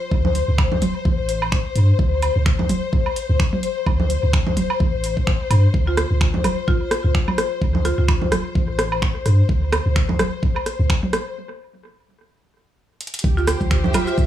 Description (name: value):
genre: minimal techno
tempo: 128 BPM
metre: 4/4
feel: swing 57% on 16ths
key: D minor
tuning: A4 = 440 Hz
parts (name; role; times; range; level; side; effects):
- clear symphonic string section; texture; 0.0-14.3 s; G4 to E5; -26 LUFS; left 7 dB; sidechain pumping
- punchy sub bass; bass; 0.1-14.0 s; D1 to G2; -20 LUFS; equal; sidechain pumping
- electronic kick drum; drums; 0.1-14.3 s; none; -20 LUFS; equal; none
- organic electronic drum kit; percussion; 0.2-14.1 s; congas, rim click, toms, woodblock; -23 LUFS; right 3 dB; tape echo
- garage drum kit; drums; 0.3-14.1 s; finger snaps, hi-hat; -27 LUFS; right 1 dB; none
- buzzing marimba with hard mallets; melody; 5.9-8.0, 13.4-14.1 s; F4; -29 LUFS; right 4 dB; tape echo
- maracas; percussion; 13.2-14.3 s; none; -37 LUFS; right 2 dB; none
room: little or no reverb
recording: dry, gritty hardware recording, studio ambience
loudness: -17 LUFS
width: side -11 dB against mid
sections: 0.0-13.2 A section; 13.2-14.3 B section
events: break 11.4-13.2; drum fill 13.0; drop 13.2-14.3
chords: 0.0 D5; 13.2 Dsus4